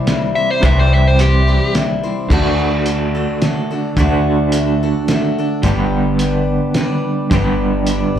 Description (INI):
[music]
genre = folk rock and heartland rock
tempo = 108 BPM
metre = 3/4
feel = straight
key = unclear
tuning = A4 = 440 Hz
[part]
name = picked acoustic archtop guitar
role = accompaniment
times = 0.0-8.2 s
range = C3 to C5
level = -22 LUFS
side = left 6 dB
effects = slapback echo
[part]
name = electric guitar through a small old amp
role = riff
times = 0.0-8.2 s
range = G2 to G4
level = -18 LUFS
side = right 3 dB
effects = tremolo
[part]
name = cloth-damped thuddy drum kit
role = drums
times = 0.1-8.0 s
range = crash cymbal, hi-hat, kick drum, snare drum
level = -20 LUFS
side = equal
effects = none
[part]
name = dark smooth lead guitar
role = melody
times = 0.4-1.7 s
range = G4 to E5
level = -17 LUFS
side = left 2 dB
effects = overdrive, slapback echo
[part]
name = upright bass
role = bass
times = 0.6-8.2 s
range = G1 to D2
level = -16 LUFS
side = equal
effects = none
[sound]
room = light reverb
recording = live gig heard through the venue's PA, club reverb, faint mains hum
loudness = -13 LUFS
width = side -10 dB against mid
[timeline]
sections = 0.0-2.3 A section; 2.3-8.2 B section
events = lead electric guitar solo 0.0-2.3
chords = 0.0 C; 2.3 D; 5.6 G